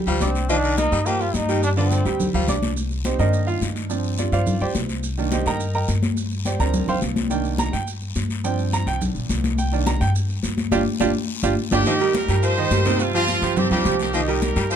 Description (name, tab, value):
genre	latin, salsa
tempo	211 BPM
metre	4/4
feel	straight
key	C minor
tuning	A4 = 436 Hz
part	clear baby grand piano	accompaniment	0.0-14.8 s	C3 to Eb6	-24 LUFS	right 6 dB	none
part	upright bass	bass	0.0-14.8 s	G1 to G2	-24 LUFS	left 1 dB	none
part	breathy baritone saxophone	second line	0.1-2.6, 11.9-14.8 s	Eb3 to G3	-27 LUFS	left 7 dB	none
part	congas	percussion	0.1-14.8 s	none	-26 LUFS	left 2 dB	none
part	maracas	percussion	0.1-14.8 s	none	-36 LUFS	right 8 dB	none
part	brilliant trombone	melody	0.2-2.3 s	C4 to G4	-24 LUFS	left 1 dB	none
part	guiro	percussion	0.2-14.8 s	none	-35 LUFS	left 8 dB	none
part	bright horn section	melody	11.7-14.8 s	Bb3 to C5	-23 LUFS	equal	none
room	light reverb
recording	close, detailed microphones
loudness	-19 LUFS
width	side -8 dB against mid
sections	0.0-2.8 A section; 2.8-11.9 B section; 11.9-14.8 C section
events	grand piano solo 2.8-11.9; band accent 10.7-11.9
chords	0.5 Cm7; 1.6 G7sus4; 2.8 Cm7; 3.9 G7sus4; 5.0 Cm7; 6.2 G7sus4; 7.3 Cm7; 8.4 G7sus4; 9.6 Cm7; 10.7 G5; 11.9 Cm7; 13.0 G7sus4; 14.1 Cm7